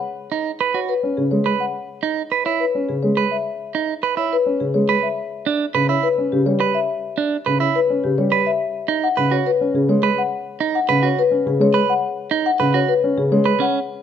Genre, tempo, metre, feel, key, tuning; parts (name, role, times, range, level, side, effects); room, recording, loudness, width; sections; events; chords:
classical, minimalist pattern music; 105 BPM; 3/4; straight; B major; A4 = 441 Hz
marimba with medium mallets; melody; 0.0-13.8 s; G4 to F#5; -21 LUFS; left 7 dB
clean electric guitar; arpeggios; 0.3-13.8 s; C#4 to B4; -20 LUFS; right 8 dB
dark baby grand piano; accompaniment; 1.0-13.5 s; C#3 to C#4; -20 LUFS; right 1 dB
moderate large studio reverb, RT60 1.4 s; close, detailed microphones; -17 LUFS; side -8 dB against mid
0.0-14.0 A section
0.0 B6; 1.7 Emaj7; 5.2 G6; 8.6 B6